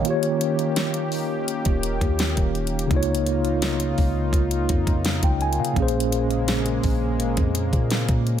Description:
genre	contemporary R&B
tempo	84 BPM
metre	4/4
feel	straight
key	Bb dorian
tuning	A4 = 440 Hz
part	mellow tine electric piano	accompaniment	0.0-8.4 s	Bb2 to Ab5	-24 LUFS	equal	medium stereo tremolo
part	warm analog pad	sustained chords	0.0-8.4 s	Db3 to G4	-29 LUFS	equal	chorus
part	soft 808-style bass	bass	0.0-8.4 s	Eb1 to Db3	-26 LUFS	equal	none
part	smooth R&B drum kit	drums	0.0-8.4 s	hi-hat, kick drum, snare drum	-24 LUFS	equal	none
room	digital ambience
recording	none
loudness	-20 LUFS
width	side -10 dB against mid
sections	0.0-8.4 A section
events	break 0.1-1.5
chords	0.1 Eb7; 2.9 Db69; 5.8 Bbm7

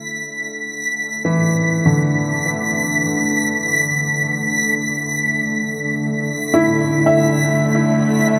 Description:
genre	ambient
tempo	free time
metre	none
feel	none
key	unclear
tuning	A4 = 438 Hz
part	felt-muted upright piano	arpeggios	0.0-8.4 s	D3 to E5	-21 LUFS	equal	delay
part	bowed-like drone	drone	0.0-8.4 s	D3 to A3	-24 LUFS	equal	built-in reverb
part	backwards swelling texture	texture	0.0-8.4 s	B6	-22 LUFS	equal	built-in reverb
room	wet huge ambient reverb, RT60 6.9 s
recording	in a vast, echoing space, cassette tape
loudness	-18 LUFS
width	mono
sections	0.0-8.4 A section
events	fade-in on felt piano 0.0-8.4; fade-in on synth drone 0.0-8.4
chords	0.0 Dsus2

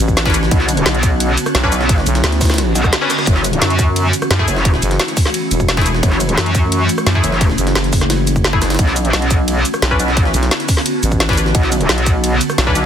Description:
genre	dark technical drum and bass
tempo	174 BPM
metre	4/4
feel	straight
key	unclear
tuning	A4 = 439 Hz
part	swarming drone	sustained chords	0.0-12.9 s	D3 to F#4	-20 LUFS	equal	built-in reverb, sidechain pumping
part	growling FM bass	bass	0.0-12.7 s	E1 to F#2	-16 LUFS	equal	none
part	drum and bass drum kit	drums	0.0-12.8 s	hi-hat, rim click, shaker, snare drum	-19 LUFS	equal	none
part	jungle sampler-style drum kit	drums	0.0-12.8 s	ride cymbal, snare drum	-25 LUFS	right 1 dB	high-pass filter on cymbals, high-pass filter on snare, high-pass filter on room
part	electronic kick drum	drums	0.1-12.7 s	none	-16 LUFS	equal	none
part	band-passed chord stab	stabs	0.3-12.8 s	A3 to B4	-22 LUFS	left 2 dB	chorus, dub echo
part	metallic wobble bass	bass	0.5-12.9 s	F#1 to F#2	-16 LUFS	equal	chorus, overdrive, sidechain pumping
part	reverse cymbal	sound effects	2.7-3.3 s	none	-24 LUFS	equal	none
room	light reverb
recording	dense, heavily limited modern master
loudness	-12 LUFS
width	side -9 dB against mid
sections	0.0-12.9 A section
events	reverse cymbal 2.7-3.3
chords	0.0 Bmadd9; 3.3 F#m7; 8.8 Bmadd9

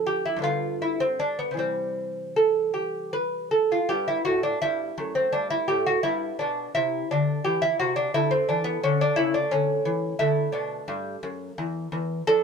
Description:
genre	classical, baroque-style dance for lute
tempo	52-59 BPM (dotted quarters)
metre	6/8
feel	rubato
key	C major, G major from 3.9 s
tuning	A4 = 439 Hz
part	lute	solo	0.0-12.4 s	E2 to B4	-23 LUFS	equal	none
room	little or no reverb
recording	close, detailed microphones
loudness	-23 LUFS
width	side -6 dB against mid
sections	0.0-3.9 A section; 3.9-12.4 A section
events	none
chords	0.4 G; 1.6 C; 3.9 G; 5.0 F#m7b5; 6.0 G; 8.1 D5; 9.2 A/C#; 10.2 D

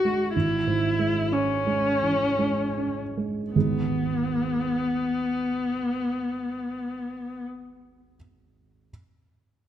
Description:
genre	classical, romantic duo for viola and grand piano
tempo	49-64 BPM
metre	3/4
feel	rubato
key	G# minor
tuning	A4 = 444 Hz
part	rich viola	melody	0.0-7.4 s	B3 to F#4	-25 LUFS	left 2 dB	none
part	dark baby grand piano	accompaniment	0.0-8.9 s	G#1 to G#4	-27 LUFS	right 4 dB	none
room	moderate recital hall reverb, RT60 1.6 s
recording	none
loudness	-24 LUFS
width	side -10 dB against mid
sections	0.0-3.5 A section; 3.5-6.7 B section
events	slowing down 0.0-3.5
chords	0.3 C#m/G#; 3.5 G#m

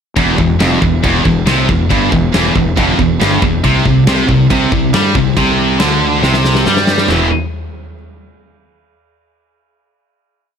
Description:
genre	heavy metal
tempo	139 BPM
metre	4/4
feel	straight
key	E minor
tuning	A4 = 440 Hz
part	heavy high-gain guitar	riff	0.2-7.3 s	E2 to G3	-16 LUFS	right 10 dB	distortion
part	heavy high-gain guitar	riff	0.2-7.3 s	E2 to G3	-20 LUFS	equal	distortion
part	scooped high-gain guitar	riff	0.2-7.3 s	E2 to G3	-16 LUFS	left 8 dB	distortion
part	fuzz fingered electric bass	bass	0.2-7.3 s	E1 to G2	-17 LUFS	equal	overdrive
part	big rock drum kit	drums	0.2-7.2 s	crash cymbal, kick drum, snare drum, toms	-16 LUFS	equal	none
room	small room ambience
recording	none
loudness	-10 LUFS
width	side -7 dB against mid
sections	0.2-7.1 riff; 7.1-8.8 final chord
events	drum fill 6.2-7.1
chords	0.2 Em; 3.6 C5; 7.1 E5

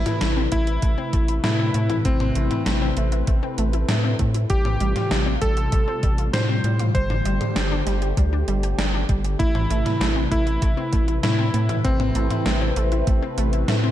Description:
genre	synthwave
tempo	98 BPM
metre	4/4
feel	straight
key	A minor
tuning	A4 = 439 Hz
part	bright electric grand piano	melody	0.0-13.9 s	C4 to C5	-28 LUFS	left 1 dB	ping-pong delay
part	phased analog pad	sustained chords	0.0-13.9 s	C3 to B4	-28 LUFS	left 1 dB	phaser, chorus, sidechain pumping
part	round analog bass	bass	0.0-13.9 s	G1 to A2	-22 LUFS	equal	tube saturation
part	analog pluck	arpeggios	0.1-13.9 s	G3 to G4	-30 LUFS	left 1 dB	chorus, ping-pong delay
part	gated 80s digital drum machine	drums	0.1-13.8 s	hi-hat, snare drum, toms	-26 LUFS	right 1 dB	gated reverb, gated reverb snare, overdrive
part	electronic kick drum	drums	0.5-13.2 s	none	-23 LUFS	equal	overdrive
room	light reverb, digital ambience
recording	dark, warm production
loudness	-19 LUFS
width	side -12 dB against mid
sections	0.0-13.9 A section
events	none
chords	0.0 Amadd9; 4.5 Fadd9/A; 6.9 Gsus2; 9.4 Amadd9

